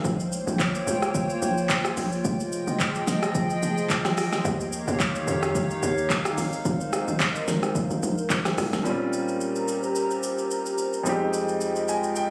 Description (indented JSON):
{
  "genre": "amapiano",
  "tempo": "109 BPM",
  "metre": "4/4",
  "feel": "swing 55% on 16ths",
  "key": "Bb dorian",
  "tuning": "A4 = 440 Hz",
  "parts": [
    { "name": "hollow soft pad", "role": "sustained chords", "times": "0.0-12.3 s", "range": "Eb3 to Bb5", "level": "-30 LUFS", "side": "equal", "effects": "chorus, sidechain pumping" },
    { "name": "hollow log drum bass", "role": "bass", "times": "0.0-8.8 s", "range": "F1 to F2", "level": "-32 LUFS", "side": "equal", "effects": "none" },
    { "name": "smooth R&B drum kit", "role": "drums", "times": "0.0-12.3 s", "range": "handclaps, hi-hat, kick drum, rim click, shaker, snare drum", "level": "-30 LUFS", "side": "equal", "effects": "none" },
    { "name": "clear grand piano", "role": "accompaniment", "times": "8.8-12.3 s", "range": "F2 to Ab5", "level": "-29 LUFS", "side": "equal", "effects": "none" }
  ],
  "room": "moderate lush hall reverb, RT60 1.7 s",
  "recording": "recorded on a phone in the room, studio reverb",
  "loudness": "-26 LUFS",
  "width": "mono",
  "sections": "0.0-8.9 A section; 8.9-12.3 B section",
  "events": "drop 0.0-8.9; grand piano fill 11.6-12.3",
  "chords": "0.0 Bbm69; 2.2 Fm9; 4.5 Eb7; 6.4 Ab69; 8.9 Bbm69; 11.1 Fm9",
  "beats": "| 0.05 0.60 1.15 1.70 | 2.25 2.80 3.35 3.90 | 4.45 5.00 5.55 6.10 | 6.65 7.20 7.75 8.30 | 8.85 9.40 9.96 10.51 | 11.06 11.61 12.16"
}